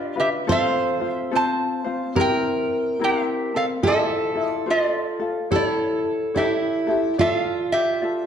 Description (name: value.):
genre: Hawaiian.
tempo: 72 BPM.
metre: 4/4.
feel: swing 63% on 8ths.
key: F major.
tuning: A4 = 440 Hz.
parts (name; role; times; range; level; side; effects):
lap resonator guitar; melody; 0.0-8.3 s; E4 to A5; -24 LUFS; right 2 dB; none.
fingerpicked steel-string acoustic guitar; second line; 0.0-8.3 s; E4 to C5; -24 LUFS; right 3 dB; none.
ukulele; accompaniment; 0.0-8.3 s; C4 to D5; -25 LUFS; left 6 dB; none.
room: wet recital hall reverb, RT60 1.6 s.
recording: dark, warm production.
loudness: -20 LUFS.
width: side -8 dB against mid.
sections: 0.0-7.2 A section; 7.2-8.3 B section.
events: none.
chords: 0.5 F/C; 2.2 C7; 3.8 Fmaj7; 5.5 A7; 7.2 Dmadd9.